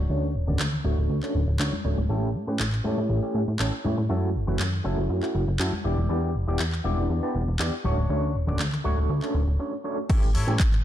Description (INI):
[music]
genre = filtered disco house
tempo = 120 BPM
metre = 4/4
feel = straight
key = A mixolydian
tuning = A4 = 443 Hz
[part]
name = electric guitar with an envelope filter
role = riff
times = 0.0-10.7 s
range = C#4 to D5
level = -38 LUFS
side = left 3 dB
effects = sidechain pumping, low-pass filter
[part]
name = plucky analog bass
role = bass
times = 0.0-10.8 s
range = D1 to A2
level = -25 LUFS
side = equal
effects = sidechain pumping, low-pass filter
[part]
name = overdriven tine electric piano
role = accompaniment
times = 0.1-10.6 s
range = E3 to C#6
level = -30 LUFS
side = equal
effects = medium tremolo, phaser, vintage 12-bit sampler grit, sidechain pumping, low-pass filter
[part]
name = maracas and congas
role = percussion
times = 0.1-9.6 s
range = none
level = -35 LUFS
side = left 3 dB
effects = sidechain pumping on perc, low-pass filter on perc
[part]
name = house drum kit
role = drums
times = 0.6-10.8 s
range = crash cymbal, handclaps, hi-hat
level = -33 LUFS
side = equal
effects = studio reverb, sidechain pumping on hats, sidechain pumping on cymbals
[part]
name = electronic kick drum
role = drums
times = 10.1-10.7 s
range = none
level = -21 LUFS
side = equal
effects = studio reverb
[sound]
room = light reverb, digital ambience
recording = dark, warm production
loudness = -23 LUFS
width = side -11 dB against mid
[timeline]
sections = 0.0-10.1 A section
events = filter sweep 0.0-10.1; break 9.6-10.1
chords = 0.0 Dmaj7; 2.1 A7; 4.1 F#m7; 5.8 Em7; 7.8 Dmaj7; 10.1 A7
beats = | 0.10 0.60 1.10 1.60 | 2.10 2.60 3.10 3.60 | 4.10 4.60 5.10 5.60 | 6.10 6.60 7.10 7.60 | 8.10 8.60 9.10 9.60 | 10.10 10.60